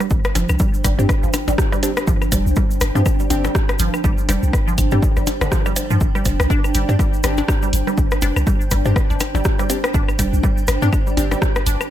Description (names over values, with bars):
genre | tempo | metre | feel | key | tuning
minimal techno | 122 BPM | 4/4 | swing 58% on 16ths | unclear | A4 = 440 Hz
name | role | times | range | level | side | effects
resonant blip pluck | riff | 0.0-11.7 s | D3 to D4 | -26 LUFS | right 3 dB | phaser, sidechain pumping, digital delay
electronic rim click, percussion blips and claves | percussion | 0.0-11.9 s | none | -26 LUFS | left 3 dB | dub echo
tube shaker | percussion | 0.0-11.9 s | none | -31 LUFS | right 1 dB | none
granular cloud pad | texture | 0.0-11.9 s | D4 to G5 | -26 LUFS | right 1 dB | built-in reverb, sidechain pumping
punchy sub bass | bass | 0.1-11.8 s | F1 to G2 | -19 LUFS | equal | sidechain pumping
electronic kick drum | drums | 0.1-11.5 s | none | -19 LUFS | equal | none
punchy analog drum machine | drums | 0.4-11.8 s | hi-hat, rim click | -26 LUFS | right 1 dB | none
wavetable chord stab | stabs | 1.0-11.3 s | C4 to G4 | -26 LUFS | left 2 dB | dub echo
room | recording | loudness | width
little or no reverb | none | -15 LUFS | side -12 dB against mid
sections
0.0-11.9 A section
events
none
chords
0.0 Gsus4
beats
| 0.11 0.60 1.09 1.58 | 2.07 2.57 3.06 3.55 | 4.04 4.53 5.03 5.52 | 6.01 6.50 6.99 7.48 | 7.98 8.47 8.96 9.45 | 9.94 10.44 10.93 11.42